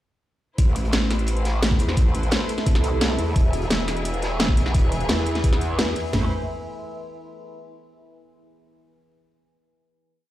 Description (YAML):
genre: dark technical drum and bass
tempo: 173 BPM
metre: 4/4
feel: straight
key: A harmonic minor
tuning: A4 = 435 Hz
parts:
  - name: clear studio string section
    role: sustained chords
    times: 0.6-6.3 s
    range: E3 to C5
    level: -32 LUFS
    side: left 1 dB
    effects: sidechain pumping
  - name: growl bass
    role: bass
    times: 0.6-6.3 s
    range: E1 to E2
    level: -24 LUFS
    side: equal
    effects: chorus, overdrive, sidechain pumping
  - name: crunchy breakbeat drum kit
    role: drums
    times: 0.6-6.0 s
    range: hi-hat, snare drum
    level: -34 LUFS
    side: equal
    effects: high-pass filter on hats, high-pass filter on snare, high-pass filter on room
  - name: drum and bass drum kit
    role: drums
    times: 0.6-6.2 s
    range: kick drum, snare drum, toms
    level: -19 LUFS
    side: equal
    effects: none
  - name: drum and bass drum kit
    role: drums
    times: 0.6-6.0 s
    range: hi-hat, snare drum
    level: -25 LUFS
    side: equal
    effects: none
  - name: deep dark ambient pad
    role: texture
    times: 1.9-7.5 s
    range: E4 to C6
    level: -32 LUFS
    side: right 1 dB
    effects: chorus, built-in reverb, sidechain pumping
room: light reverb, small room ambience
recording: played on a big sound system in a bare room, large studio reverb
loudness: -19 LUFS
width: side -14 dB against mid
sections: 0.6-6.1 drop; 6.1-7.5 final chord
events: drop 0.6-6.1; band accent 5.8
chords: 0.6 Am; 3.4 E; 6.1 Am